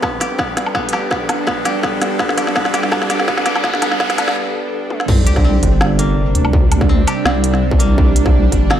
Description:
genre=half-time drum and bass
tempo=166 BPM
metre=4/4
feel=swing 53% on 16ths, half-time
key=unclear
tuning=A4 = 438 Hz
part: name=bowed-like drone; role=sustained chords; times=0.0-8.8 s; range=C3 to A4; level=-20 LUFS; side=right 2 dB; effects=built-in reverb, sidechain pumping
part: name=koto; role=arpeggios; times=0.0-8.8 s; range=Bb3 to G4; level=-24 LUFS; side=left 2 dB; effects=tape echo
part: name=electronic kick drum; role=drums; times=0.0-8.6 s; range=none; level=-17 LUFS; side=equal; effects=distortion, studio ambience
part: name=organic electronic drum kit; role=drums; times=0.0-8.8 s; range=crash cymbal, hi-hat, snare drum, toms, woodblock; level=-19 LUFS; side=equal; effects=high-pass filter on snare, studio ambience, high-pass filter on hats, high-pass filter on perc, high-pass filter on toms, high-pass filter on cymbals
part: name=riser and sub drop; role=sound effects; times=0.0-6.5 s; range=none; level=-24 LUFS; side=equal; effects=none
part: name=deep soft wobble bass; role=bass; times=5.1-8.8 s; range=G1 to D2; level=-16 LUFS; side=equal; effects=chorus, tube saturation
room=moderate echo chamber reverb, RT60 1.5 s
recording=high-pass filter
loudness=-13 LUFS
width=side -10 dB against mid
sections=0.0-5.1 A section; 5.1-8.8 B section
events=build-up 0.0-5.1; drum fill 0.0-4.4, 4.9; riser 0.0-4.4; break 4.4-5.1; drop 5.1-8.8; impact 5.1-6.5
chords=0.0 Gadd9; 5.1 C5

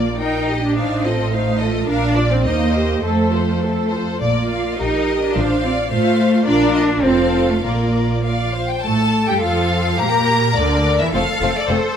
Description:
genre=quick classical-period movement for string orchestra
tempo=99-109 BPM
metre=2/4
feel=rubato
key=Bb major, F major from 8.8 s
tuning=A4 = 440 Hz
part: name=clear studio violin section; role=melody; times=0.0-12.0 s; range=A4 to Bb5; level=-23 LUFS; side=left 3 dB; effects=none
part: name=rich studio violin section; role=second line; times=0.0-11.8 s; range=D4 to Eb5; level=-24 LUFS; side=left 3 dB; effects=none
part: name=rich symphonic viola section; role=accompaniment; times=0.0-11.8 s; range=D3 to A4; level=-23 LUFS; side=right 2 dB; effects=none
part: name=clear symphonic cello section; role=bass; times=0.0-12.0 s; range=A3 to Bb4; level=-20 LUFS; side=equal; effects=none
part: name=clear symphonic double bass section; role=bass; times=0.0-11.8 s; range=F1 to Bb2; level=-22 LUFS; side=right 2 dB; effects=none
room=moderate scoring stage reverb, RT60 1.7 s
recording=none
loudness=-15 LUFS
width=side -8 dB against mid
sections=0.0-8.8 A section; 8.8-12.0 B section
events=none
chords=0.2 Eb/Bb; 0.8 F7/A; 1.9 Bb; 2.5 Cm/Eb; 3.0 F; 4.2 Bb; 4.8 Eb/Bb; 5.4 F/A; 6.5 Bb; 7.0 F; 7.6 Bb; 8.8 F; 10.0 Gm6; 11.1 F

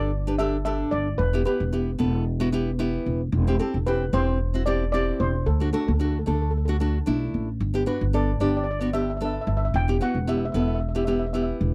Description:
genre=calypso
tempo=112 BPM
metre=4/4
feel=swing 53% on 16ths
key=G major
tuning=A4 = 442 Hz
part: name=steel pan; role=melody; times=0.0-11.5 s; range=A4 to G5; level=-32 LUFS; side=equal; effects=none
part: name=nylon-string guitar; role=accompaniment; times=0.0-11.7 s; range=A3 to B4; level=-28 LUFS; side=equal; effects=none
part: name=upright bass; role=bass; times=0.0-11.7 s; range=E1 to D2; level=-27 LUFS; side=equal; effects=none
room=little or no reverb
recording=dry, close 1970s-style studio recording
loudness=-24 LUFS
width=mono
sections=0.0-11.7 A section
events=none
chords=0.0 Gsus2; 1.2 Em; 3.3 C/E; 5.5 D; 7.6 G; 9.7 Em

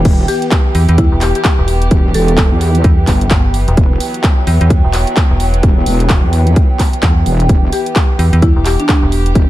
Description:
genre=bass house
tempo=129 BPM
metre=4/4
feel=swing 60% on 16ths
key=E minor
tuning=A4 = 438 Hz
part: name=rich studio string section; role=sustained chords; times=0.0-9.5 s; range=E3 to G4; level=-22 LUFS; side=equal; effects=sidechain pumping
part: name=wobble bass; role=bass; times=0.0-9.5 s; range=E1 to E2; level=-13 LUFS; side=equal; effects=chorus, overdrive, sidechain pumping
part: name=granular cloud pad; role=texture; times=0.0-9.5 s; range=G5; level=-24 LUFS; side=right 2 dB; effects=built-in reverb, sidechain pumping
part: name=electronic kick drum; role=drums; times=0.1-9.5 s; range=none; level=-11 LUFS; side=equal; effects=overdrive
part: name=house drum kit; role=drums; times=0.1-9.5 s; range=crash cymbal, handclaps, hi-hat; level=-20 LUFS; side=equal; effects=overdrive
part: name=buzzing marimba with hard mallets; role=melody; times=0.3-2.3, 7.7-9.0 s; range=D4 to A4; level=-20 LUFS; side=left 2 dB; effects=digital delay
part: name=metallic FM bass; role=bass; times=0.7-9.3 s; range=E1 to E2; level=-12 LUFS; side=equal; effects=tube saturation, sidechain pumping
room=little or no reverb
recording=none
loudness=-9 LUFS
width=side -15 dB against mid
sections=0.0-9.5 A section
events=none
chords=0.0 Em

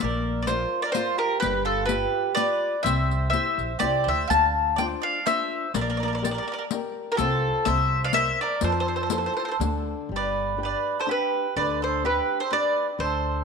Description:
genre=italian folk, Italian serenade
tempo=125 BPM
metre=3/4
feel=swing 54% on 8ths, rubato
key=F major, G major from 10.1 s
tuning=A4 = 440 Hz
part: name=mandolin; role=melody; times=0.0-13.4 s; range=A4 to A5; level=-25 LUFS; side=left 1 dB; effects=none
part: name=mandolin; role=second line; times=0.0-13.4 s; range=F4 to F5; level=-30 LUFS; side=right 10 dB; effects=slapback echo
part: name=flamenco guitar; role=accompaniment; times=0.0-13.4 s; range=C3 to E5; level=-33 LUFS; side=left 9 dB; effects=none
part: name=upright bass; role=bass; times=0.0-13.4 s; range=G1 to F2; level=-29 LUFS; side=right 1 dB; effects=none
part: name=riq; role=percussion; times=0.0-9.9 s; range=none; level=-32 LUFS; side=left 11 dB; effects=none
room=moderate echo chamber reverb, RT60 1.7 s, studio ambience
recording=1960s-style stereo with parts hard left and right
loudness=-22 LUFS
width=side -5 dB against mid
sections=0.0-10.1 A section; 10.1-13.4 B section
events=none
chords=0.0 Bb; 1.4 G7; 2.9 C; 4.3 Dm7; 5.8 Bb6; 7.2 F/C; 7.7 C7; 8.6 Fmaj7; 9.6 N.C.; 10.1 G

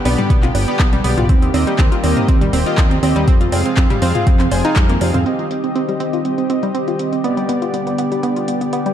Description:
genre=progressive house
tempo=121 BPM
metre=4/4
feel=straight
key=C minor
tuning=A4 = 440 Hz
part: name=lush unison pad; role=sustained chords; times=0.0-8.9 s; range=C3 to G4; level=-24 LUFS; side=left 1 dB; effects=chorus, sidechain pumping
part: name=analog pluck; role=arpeggios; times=0.1-8.9 s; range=C3 to C5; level=-20 LUFS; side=right 2 dB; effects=chorus, sidechain pumping, ping-pong delay
part: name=soft supersaw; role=stabs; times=0.1-8.9 s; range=Bb3 to Ab5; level=-22 LUFS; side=left 1 dB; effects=sidechain pumping, low-pass filter, ping-pong delay
part: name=fat analog bass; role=bass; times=0.1-5.2 s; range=Eb1 to F2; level=-19 LUFS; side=equal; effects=sidechain pumping
part: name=deep house drum kit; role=drums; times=0.1-8.9 s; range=handclaps, hi-hat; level=-26 LUFS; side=left 1 dB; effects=overdrive, low-pass filter on hats, low-pass filter on snare, low-pass filter on room
part: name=electronic bongos, congas and toms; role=percussion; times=0.1-5.2 s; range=none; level=-24 LUFS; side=equal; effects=sidechain pumping on perc, sidechain pumping on toms
part: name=electronic kick drum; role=drums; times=0.3-4.9 s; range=none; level=-14 LUFS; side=equal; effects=overdrive
room=light reverb, digital ambience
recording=dark, warm production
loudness=-14 LUFS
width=side -10 dB against mid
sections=0.0-5.3 A section; 5.3-8.9 B section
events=none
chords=0.0 G/B; 1.3 Eb; 3.3 Fm; 5.3 Cm; 7.2 G

